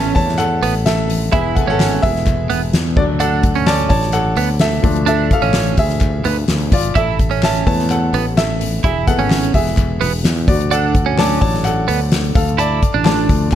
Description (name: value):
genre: piano-driven pop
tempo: 128 BPM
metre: 4/4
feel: straight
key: unclear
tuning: A4 = 440 Hz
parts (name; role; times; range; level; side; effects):
- clear baby grand piano; accompaniment; 0.0-13.6 s; E3 to A5; -19 LUFS; left 1 dB; none
- twelve-string electric guitar; riff; 0.0-13.3 s; B3 to E4; -20 LUFS; right 11 dB; none
- fretless electric bass; bass; 0.0-13.6 s; E1 to E2; -19 LUFS; equal; none
- soft-mallet drum kit; drums; 0.2-13.6 s; crash cymbal, hi-hat, kick drum, snare drum; -18 LUFS; left 1 dB; none
- group handclap; percussion; 0.4-13.6 s; none; -30 LUFS; left 9 dB; none
room: light reverb, small room ambience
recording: dark, warm production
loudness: -13 LUFS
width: side -11 dB against mid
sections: 0.0-13.6 A section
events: grand piano solo 0.0-13.6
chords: 0.0 Asus2; 1.3 E; 3.0 D; 4.8 Dm; 7.0 Asus2; 8.8 E; 10.5 D; 12.4 Dm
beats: 0.39 0.86 | 1.33 1.79 2.26 2.73 | 3.20 3.67 4.14 4.61 | 5.08 5.55 6.02 6.49 | 6.96 7.43 7.90 8.37 | 8.83 9.30 9.77 10.24 | 10.71 11.18 11.65 12.12 | 12.59 13.06 13.53